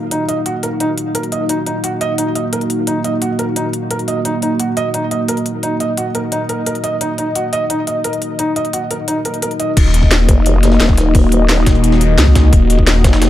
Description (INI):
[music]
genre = dark technical drum and bass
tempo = 174 BPM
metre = 4/4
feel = straight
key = Eb minor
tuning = A4 = 440 Hz
[part]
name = dark analog pad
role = sustained chords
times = 0.0-13.3 s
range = Bb3 to F5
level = -18 LUFS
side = left 1 dB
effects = chorus, sidechain pumping
[part]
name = felt-muted upright piano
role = arpeggios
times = 0.1-9.7 s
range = Eb4 to Eb5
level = -20 LUFS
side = right 2 dB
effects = sidechain pumping, digital delay
[part]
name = drum and bass drum kit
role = drums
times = 0.1-13.3 s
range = crash cymbal, hi-hat, snare drum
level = -19 LUFS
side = left 1 dB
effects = none
[part]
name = phased detuned saw bass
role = bass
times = 9.8-13.0 s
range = Eb1 to Db2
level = -12 LUFS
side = equal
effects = phaser, overdrive, sidechain pumping
[part]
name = electronic kick drum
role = drums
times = 9.8-13.1 s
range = none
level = -12 LUFS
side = equal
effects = none
[part]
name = jungle sampler-style drum kit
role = drums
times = 9.8-13.3 s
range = hi-hat, snare drum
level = -25 LUFS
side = equal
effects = high-pass filter on hats, high-pass filter on snare, high-pass filter on room
[part]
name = vowel-sweep wobble bass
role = bass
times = 10.3-13.3 s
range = Eb1 to F1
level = -13 LUFS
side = equal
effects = chorus
[sound]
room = light reverb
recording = none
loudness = -13 LUFS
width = side -13 dB against mid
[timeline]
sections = 0.0-9.8 A section; 9.8-13.3 B section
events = drop 9.8-13.3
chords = 0.0 Ebm